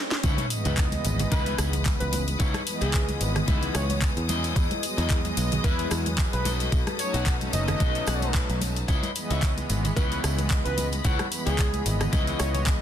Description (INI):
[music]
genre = nu-disco, nu disco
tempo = 111 BPM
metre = 4/4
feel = swing 55% on 16ths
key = C# minor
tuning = A4 = 440 Hz
[part]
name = riser and sub drop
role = sound effects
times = 0.0-2.4 s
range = none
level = -34 LUFS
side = right 1 dB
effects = none
[part]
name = house drum kit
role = drums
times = 0.1-12.8 s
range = handclaps, hi-hat, rim click, snare drum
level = -32 LUFS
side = left 1 dB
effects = overdrive, studio ambience
[part]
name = clear studio string section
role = sustained chords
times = 0.2-12.8 s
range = G#4 to D#6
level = -37 LUFS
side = left 3 dB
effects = sidechain pumping
[part]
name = electric guitar at the edge of break-up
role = riff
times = 0.2-12.6 s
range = D#4 to F#5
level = -33 LUFS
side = left 4 dB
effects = wide subtle chorus
[part]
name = picked electric bass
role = bass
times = 0.2-12.8 s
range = F#1 to E2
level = -28 LUFS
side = equal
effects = none
[part]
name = electronic kick drum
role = drums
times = 0.2-12.8 s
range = none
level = -25 LUFS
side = equal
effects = studio ambience
[part]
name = tambourine and congas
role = percussion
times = 0.2-12.8 s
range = none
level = -35 LUFS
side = right 2 dB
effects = none
[part]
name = warm analog pad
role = accompaniment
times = 0.5-12.8 s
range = E3 to D#5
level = -33 LUFS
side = equal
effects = chorus, sidechain pumping, dub echo
[part]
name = wide unison lead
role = melody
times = 1.3-12.6 s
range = G#4 to D#5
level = -34 LUFS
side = equal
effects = ping-pong delay
[sound]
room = little or no reverb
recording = dense, heavily limited modern master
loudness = -23 LUFS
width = side -10 dB against mid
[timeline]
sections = 0.2-12.8 A section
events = drum fill 0.0; riser 0.0; stop 0.0; drop 0.2-12.8; impact 0.2-2.4; clean electric guitar fill 7.8-8.9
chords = 0.2 C#m9; 4.3 Emaj7; 6.5 B7; 8.9 C#m9